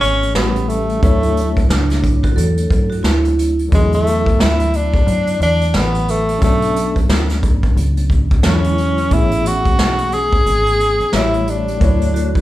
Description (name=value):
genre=hip hop, jazz-hop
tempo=89 BPM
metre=4/4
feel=swing 60% on 16ths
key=unclear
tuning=A4 = 441 Hz
part: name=breathy tenor saxophone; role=melody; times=0.0-12.4 s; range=G#3 to G#4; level=-17 LUFS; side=equal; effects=none
part: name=tine electric piano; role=accompaniment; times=0.0-12.4 s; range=D3 to C#5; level=-22 LUFS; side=equal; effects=medium stereo tremolo
part: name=deep dub fingered electric bass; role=bass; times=0.0-12.4 s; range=G#1 to F#2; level=-18 LUFS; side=equal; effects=none
part: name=vintage brush drum kit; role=drums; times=0.0-12.4 s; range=hi-hat, kick drum, snare drum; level=-17 LUFS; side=equal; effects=none
part: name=vibraphone with medium hard mallets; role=second line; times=1.7-3.5, 12.1-12.4 s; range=D4 to A4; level=-20 LUFS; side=right 4 dB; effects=none
room=moderate large studio reverb, RT60 0.8 s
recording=band playing live in one room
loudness=-13 LUFS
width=side -15 dB against mid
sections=0.0-12.4 A section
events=none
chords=0.4 A7; 1.0 Dmaj9; 3.7 E9sus4; 6.4 Bm9; 8.4 E13; 9.1 Amaj9; 11.1 A7; 11.8 Dmaj9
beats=0.35 | 1.02 1.70 2.37 3.05 | 3.72 4.40 5.07 5.74 | 6.42 7.09 7.77 8.44 | 9.12 9.79 10.46 11.14 | 11.81